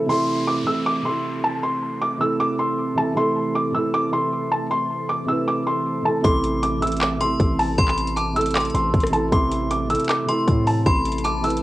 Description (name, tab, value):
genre	hip hop, trap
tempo	156 BPM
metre	4/4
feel	half-time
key	A minor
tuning	A4 = 439 Hz
part	felt-muted upright piano	melody	0.0-11.6 s	A5 to E6	-23 LUFS	equal	low-pass filter, cassette tape
part	felt-muted upright piano	accompaniment	0.0-11.6 s	C3 to B4	-24 LUFS	right 2 dB	low-pass filter, cassette tape
part	glassy FM pad	sustained chords	1.2-11.6 s	E3 to A4	-33 LUFS	left 3 dB	ensemble chorus, built-in reverb, cassette tape
part	downlifter	sound effects	0.1-3.2 s	none	-36 LUFS	left 1 dB	none
part	metallic FM bell	second line	6.2-11.6 s	A5 to D6	-30 LUFS	left 2 dB	chorus, phaser, cassette tape, tape echo
part	hard-hitting 808-style bass	bass	6.2-11.6 s	A1 to A2	-25 LUFS	equal	none
part	trap drum kit	drums	6.2-11.6 s	handclaps, hi-hat, kick drum, rim click	-23 LUFS	equal	vintage 12-bit sampler grit, cassette tape
room	little or no reverb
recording	home recording on cassette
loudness	-19 LUFS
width	side -16 dB against mid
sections	0.1-11.6 A section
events	none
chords	0.1 Am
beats	| 0.09 0.48 0.86 1.25 | 1.63 2.02 2.40 2.78 | 3.17 3.55 3.94 4.32 | 4.71 5.09 5.48 5.86 | 6.25 6.63 7.01 7.40 | 7.78 8.17 8.55 8.94 | 9.32 9.71 10.09 10.48 | 10.86 11.25